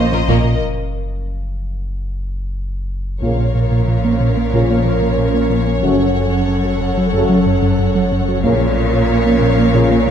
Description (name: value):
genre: cinematic, hybrid orchestral and electronic film score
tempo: 92 BPM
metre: 4/4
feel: straight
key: Bb harmonic minor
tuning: A4 = 440 Hz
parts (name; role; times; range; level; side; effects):
- warm symphonic violin section; melody; 0.0-10.1 s; Eb5 to Gb5; -28 LUFS; left 5 dB; none
- warm symphonic viola section; accompaniment; 0.0-10.1 s; A4 to C5; -26 LUFS; equal; none
- dark analog pad; sustained chords; 0.0-10.1 s; F3 to F5; -21 LUFS; equal; chorus, phaser
- smooth synth bass; riff; 0.0-10.1 s; Gb2 to Bb3; -18 LUFS; right 2 dB; none
- saturated sub bass; bass; 0.0-10.1 s; Gb1 to Bb1; -22 LUFS; equal; none
- clear symphonic violin section; second line; 0.1-10.1 s; Bb3 to Db5; -25 LUFS; left 4 dB; none
- rich symphonic cello section; bass; 0.1-10.1 s; Gb2 to Bb2; -21 LUFS; right 2 dB; none
- rich symphonic double bass section; bass; 0.3-9.1 s; Gb1 to Bb1; -26 LUFS; right 3 dB; none
- taiko ensemble; drums; 0.3-4.5, 8.4-9.7 s; none; barely audible; none; none
- dark trombone section; sustained chords; 3.2-10.0 s; Db3 to Bb3; -25 LUFS; right 4 dB; none
- mellow French horn section; sustained chords; 3.2-10.0 s; Db4 to Gb4; -23 LUFS; left 5 dB; none
room: moderate scoring stage reverb, RT60 1.8 s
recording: none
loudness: -14 LUFS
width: side -8 dB against mid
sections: 0.0-3.2 A section; 3.2-10.1 B section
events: break 0.6-3.2; drum fill 2.6-3.2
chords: 0.0 Bbm; 0.6 N.C.; 3.2 Bbm; 5.8 Gbm; 8.4 Bbm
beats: | 0.62 1.27 1.92 2.57 | 3.23 3.88 4.53 5.18 | 5.83 6.49 7.14 7.79 | 8.44 9.09 9.75